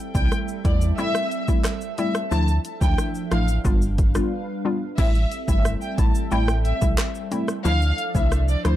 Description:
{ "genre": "dancehall", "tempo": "90 BPM", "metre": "4/4", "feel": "straight", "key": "A minor", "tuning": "A4 = 443 Hz", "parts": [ { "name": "hollow soft pad", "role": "sustained chords", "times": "0.0-8.8 s", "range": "F3 to F5", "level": "-33 LUFS", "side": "right 1 dB", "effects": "ensemble chorus" }, { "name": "warm studio violin section", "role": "melody", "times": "0.1-8.8 s", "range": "C5 to A5", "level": "-28 LUFS", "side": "left 1 dB", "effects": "ping-pong delay" }, { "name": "hollow square pluck", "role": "accompaniment", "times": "0.1-8.8 s", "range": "F3 to F4", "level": "-27 LUFS", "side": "left 2 dB", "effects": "chorus, sidechain pumping" }, { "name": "sub bass with octave", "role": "bass", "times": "0.1-8.8 s", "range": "G1 to E2", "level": "-22 LUFS", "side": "equal", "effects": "none" }, { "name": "deep house drum kit", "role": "drums", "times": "0.1-8.8 s", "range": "crash cymbal, handclaps, hi-hat, kick drum, rim click, shaker", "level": "-22 LUFS", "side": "equal", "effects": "none" } ], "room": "little or no reverb", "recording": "dark, warm production", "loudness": "-20 LUFS", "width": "side -13 dB against mid", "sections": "0.0-5.0 A section; 5.0-8.8 B section", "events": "break 4.3-5.0", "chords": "0.0 Am7; 2.3 Dmadd9; 3.6 G7; 5.0 Am7; 7.7 Dmadd9" }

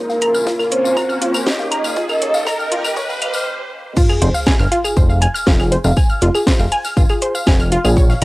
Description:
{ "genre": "melodic techno", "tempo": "120 BPM", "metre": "4/4", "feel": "straight", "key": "F minor", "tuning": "A4 = 440 Hz", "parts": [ { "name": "soft octave-layered synth lead", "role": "melody", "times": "0.0-3.5 s", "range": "Bb4 to Eb5", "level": "-19 LUFS", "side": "right 1 dB", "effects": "chorus, sidechain pumping, cassette tape, analog delay" }, { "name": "lush unison pad", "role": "sustained chords", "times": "0.0-3.9 s", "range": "Bb3 to G4", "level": "-27 LUFS", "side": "equal", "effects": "chorus, phaser, sidechain pumping, cassette tape" }, { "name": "wide unison pluck", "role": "arpeggios", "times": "0.0-8.2 s", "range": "F4 to Ab6", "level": "-20 LUFS", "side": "equal", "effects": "cassette tape, sidechain pumping, analog delay" }, { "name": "riser and sub drop", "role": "sound effects", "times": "0.0-6.0 s", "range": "none", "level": "-25 LUFS", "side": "equal", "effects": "none" }, { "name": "modern studio drum kit", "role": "drums", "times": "0.1-8.2 s", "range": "hi-hat, snare drum", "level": "-37 LUFS", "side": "left 1 dB", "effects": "none" }, { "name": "tambourine", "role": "percussion", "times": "0.1-8.2 s", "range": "none", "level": "-30 LUFS", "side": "left 5 dB", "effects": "none" }, { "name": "house drum kit", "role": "drums", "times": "0.2-8.2 s", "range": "claves, crash cymbal, hi-hat, snare drum", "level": "-20 LUFS", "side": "equal", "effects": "cassette tape" }, { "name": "electronic kick drum", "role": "drums", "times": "0.5-8.1 s", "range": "none", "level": "-15 LUFS", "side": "equal", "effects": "high-pass filter on kick, cassette tape, high-pass filter on room" }, { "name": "fat analog bass", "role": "bass", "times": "4.2-8.2 s", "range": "F1 to Bb1", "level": "-16 LUFS", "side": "equal", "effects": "sidechain pumping" } ], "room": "moderate booth ambience, RT60 0.2 s", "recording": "home recording on cassette, high-pass filter", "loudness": "-14 LUFS", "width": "side -21 dB against mid", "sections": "0.0-4.0 A section; 4.0-8.2 B section", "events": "build-up 0.0-4.0; riser 0.0-3.5; filter sweep on synth pluck 0.0-4.0; filter sweep on soft synth lead 0.0-4.0; filter sweep 0.0-4.0; break 3.5-4.0; drop 4.0-8.2; impact 4.0-6.0", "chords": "0.0 Bbm; 4.0 Fm" }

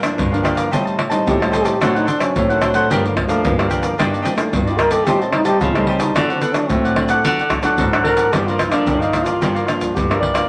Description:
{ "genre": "samba and choro", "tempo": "110 BPM", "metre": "4/4", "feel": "straight", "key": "G minor", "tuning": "A4 = 441 Hz", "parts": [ { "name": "cavaquinho", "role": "accompaniment", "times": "0.0-10.5 s", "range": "D4 to A5", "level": "-24 LUFS", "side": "equal", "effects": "none" }, { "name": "nylon-string guitar", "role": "accompaniment", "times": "0.0-10.5 s", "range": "G2 to Eb4", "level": "-25 LUFS", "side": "equal", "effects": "none" }, { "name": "tube shaker, pandeiro, tamborim and surdo", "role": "percussion", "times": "0.0-10.5 s", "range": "none", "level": "-23 LUFS", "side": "equal", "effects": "none" }, { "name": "nylon-string guitar", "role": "bass", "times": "0.2-10.4 s", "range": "G2 to D3", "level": "-26 LUFS", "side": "equal", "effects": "none" }, { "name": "dark trombone", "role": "second line", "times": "1.3-7.2 s", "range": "D3 to Bb4", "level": "-23 LUFS", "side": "equal", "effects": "none" }, { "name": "growling alto saxophone", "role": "melody", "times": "8.0-10.5 s", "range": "D4 to D5", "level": "-22 LUFS", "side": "equal", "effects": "none" } ], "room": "wet studio reverb, RT60 0.8 s", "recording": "none", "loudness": "-17 LUFS", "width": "mono", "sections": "0.0-8.3 A section; 8.3-10.5 B section", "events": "trombone solo 0.0-8.3", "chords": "0.0 Gm7; 0.7 Am7b5; 1.8 D7/A; 2.9 Gm7; 4.0 Ebmaj7/G; 5.1 Am7b5; 6.2 D; 8.3 Gm7" }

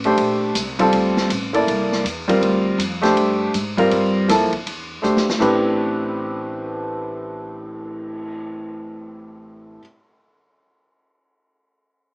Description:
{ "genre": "modal jazz", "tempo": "161 BPM", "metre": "4/4", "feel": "swing 63% on 8ths", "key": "A minor", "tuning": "A4 = 439 Hz", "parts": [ { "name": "upright bass", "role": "bass", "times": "0.0-9.8 s", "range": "A1 to G#2", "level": "-28 LUFS", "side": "equal", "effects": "none" }, { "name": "swinging big-band drum kit", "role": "drums", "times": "0.0-8.3 s", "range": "crash cymbal, cymbal swell, hi-hat, kick drum, ride cymbal, snare drum", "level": "-27 LUFS", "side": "equal", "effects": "none" }, { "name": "warm concert grand piano", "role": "accompaniment", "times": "0.1-9.8 s", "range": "A2 to D5", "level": "-18 LUFS", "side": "equal", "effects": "none" } ], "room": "moderate studio reverb, RT60 0.8 s", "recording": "small speaker sound", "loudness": "-17 LUFS", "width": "side -37 dB against mid", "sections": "0.0-5.4 A section; 5.4-8.4 B section", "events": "drum fill 5.0-5.4", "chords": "0.0 Gm11; 5.4 Am11" }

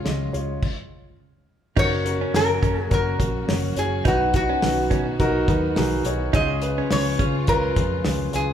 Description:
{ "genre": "piano-driven pop", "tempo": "105 BPM", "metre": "4/4", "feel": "swing 56% on 16ths", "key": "F# major", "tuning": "A4 = 442 Hz", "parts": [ { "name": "metal-body resonator slide guitar", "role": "melody", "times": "0.0-8.5 s", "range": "E#4 to D#5", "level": "-25 LUFS", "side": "equal", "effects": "none" }, { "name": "dark baby grand piano", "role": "accompaniment", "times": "0.0-8.5 s", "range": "B2 to D#5", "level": "-25 LUFS", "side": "equal", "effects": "none" }, { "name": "warm studio string section", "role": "sustained chords", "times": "0.0-8.5 s", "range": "C#3 to F#4", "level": "-36 LUFS", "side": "equal", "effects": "none" }, { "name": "vintage muted fingered electric bass", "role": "bass", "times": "0.1-8.5 s", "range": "F#1 to C#3", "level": "-27 LUFS", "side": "equal", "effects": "none" }, { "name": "damped 70s drum kit", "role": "drums", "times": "0.1-8.5 s", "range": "crash cymbal, hi-hat, kick drum, snare drum", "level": "-25 LUFS", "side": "equal", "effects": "none" }, { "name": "direct-recorded clean electric guitar", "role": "riff", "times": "1.8-7.3 s", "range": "C#4 to D#4", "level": "-30 LUFS", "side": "right 3 dB", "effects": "none" } ], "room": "wet large studio reverb, RT60 1.3 s", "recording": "band playing live in one room", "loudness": "-19 LUFS", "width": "side -9 dB against mid", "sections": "0.0-1.8 A section; 1.8-8.5 B section", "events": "stop 0.6-1.8", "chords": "0.0 C#; 1.8 F#; 4.1 B; 6.3 C#" }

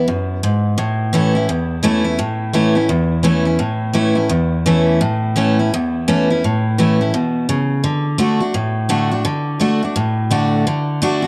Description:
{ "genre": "rock", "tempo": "170 BPM", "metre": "4/4", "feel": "swing 61% on 8ths", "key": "A major", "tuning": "A4 = 439 Hz", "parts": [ { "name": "picked steel-string acoustic guitar", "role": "solo", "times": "0.0-11.3 s", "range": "E2 to F#4", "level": "-17 LUFS", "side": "equal", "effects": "none" } ], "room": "moderate spring reverb, RT60 2.9 s", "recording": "none", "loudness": "-17 LUFS", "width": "mono", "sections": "0.0-2.2 A section; 2.2-11.3 B section", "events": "none", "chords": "0.0 N.C.; 0.8 A; 7.8 D" }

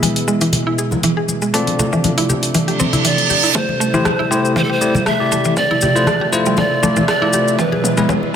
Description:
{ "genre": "afro house", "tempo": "119 BPM", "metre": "4/4", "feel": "swing 54% on 16ths", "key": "A minor", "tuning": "A4 = 436 Hz", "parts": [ { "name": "warm analog pad", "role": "sustained chords", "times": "0.0-8.4 s", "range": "B2 to E5", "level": "-23 LUFS", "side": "right 2 dB", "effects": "chorus, vintage 12-bit sampler grit, sidechain pumping" }, { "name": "mallet-like synth pluck", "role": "arpeggios", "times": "0.0-8.2 s", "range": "E3 to G#4", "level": "-20 LUFS", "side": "right 2 dB", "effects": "chorus, sidechain pumping, dub echo" }, { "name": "bell-like tine electric piano", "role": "stabs", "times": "0.0-8.1 s", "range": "G#3 to E5", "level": "-21 LUFS", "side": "left 3 dB", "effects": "sidechain pumping, low-pass filter, dub echo" }, { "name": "deep house drum kit", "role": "drums", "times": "0.0-8.2 s", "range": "hi-hat, rim click, toms", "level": "-22 LUFS", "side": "equal", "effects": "high-pass filter on hats, high-pass filter on toms, high-pass filter on snare, high-pass filter on room" }, { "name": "congas", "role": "percussion", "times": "0.0-8.3 s", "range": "none", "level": "-22 LUFS", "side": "left 3 dB", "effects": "none" }, { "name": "maracas", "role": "percussion", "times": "0.0-8.2 s", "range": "none", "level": "-25 LUFS", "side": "left 4 dB", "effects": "none" }, { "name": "reverse cymbal and riser", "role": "sound effects", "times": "2.7-8.4 s", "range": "none", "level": "-22 LUFS", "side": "right 4 dB", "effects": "none" }, { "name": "breathy bright pan flute", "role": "melody", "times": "3.1-8.3 s", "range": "A4 to E5", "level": "-19 LUFS", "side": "equal", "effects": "dub echo" }, { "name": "dark detuned saw bass", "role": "bass", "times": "3.6-8.4 s", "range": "none", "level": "barely audible", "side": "none", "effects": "none" }, { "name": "electronic kick drum", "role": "drums", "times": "3.6-8.2 s", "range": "none", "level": "-27 LUFS", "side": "right 1 dB", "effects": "none" } ], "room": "moderate lush hall reverb, RT60 1.9 s, digital ambience", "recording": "none", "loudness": "-13 LUFS", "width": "side -8 dB against mid", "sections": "0.0-3.6 A section; 3.6-8.4 B section", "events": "filter sweep on analog synth pad 0.0-3.6; reverse cymbal 2.7-3.6; build-up 3.6-8.4; drum fill 3.6-8.4; filter sweep on tine electric piano 3.6-8.4", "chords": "0.0 E; 1.5 Dm7; 3.6 Am7; 5.6 Fmaj7; 7.6 E" }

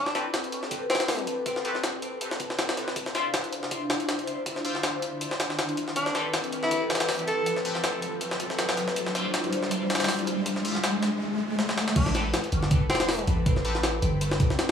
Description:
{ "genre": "drum and bass, jungle", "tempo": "160 BPM", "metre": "4/4", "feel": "swing 55% on 16ths", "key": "A minor", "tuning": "A4 = 439 Hz", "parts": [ { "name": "clear tenor saxophone", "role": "melody", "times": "0.0-1.3, 6.0-7.6, 12.0-13.3 s", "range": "C4 to A4", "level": "-32 LUFS", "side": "equal", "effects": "vintage 12-bit sampler grit, dub echo" }, { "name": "airy breathy pad", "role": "sustained chords", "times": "0.0-14.7 s", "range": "C4 to C5", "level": "-33 LUFS", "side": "left 2 dB", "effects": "chorus, phaser" }, { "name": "riser", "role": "sound effects", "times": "2.0-12.0 s", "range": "none", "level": "-32 LUFS", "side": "equal", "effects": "none" }, { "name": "band-passed chord stab", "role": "stabs", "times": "0.1-13.8 s", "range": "C4 to E5", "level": "-36 LUFS", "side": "left 2 dB", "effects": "phaser, dub echo" }, { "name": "jungle sampler-style drum kit", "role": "drums", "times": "0.1-14.7 s", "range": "crash cymbal, hi-hat, kick drum, snare drum", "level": "-28 LUFS", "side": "equal", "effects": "high-pass filter on hats, high-pass filter on kick, high-pass filter on snare, high-pass filter on cymbals" }, { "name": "warm 808-style bass", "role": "bass", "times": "12.0-14.4 s", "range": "E1 to A1", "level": "-27 LUFS", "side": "equal", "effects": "tube saturation" } ], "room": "moderate plate reverb, RT60 1.8 s, digital ambience", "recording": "vinyl crackle, studio reverb", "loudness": "-24 LUFS", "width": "side -8 dB against mid", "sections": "0.0-12.0 A section; 12.0-14.7 B section", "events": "build-up 0.0-12.0; riser 2.0-12.0; drum fill 11.6-12.0; drop 12.0-14.7", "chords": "0.0 Am9; 3.0 Dm9; 6.0 Am9; 9.0 Dm9; 12.0 Am9" }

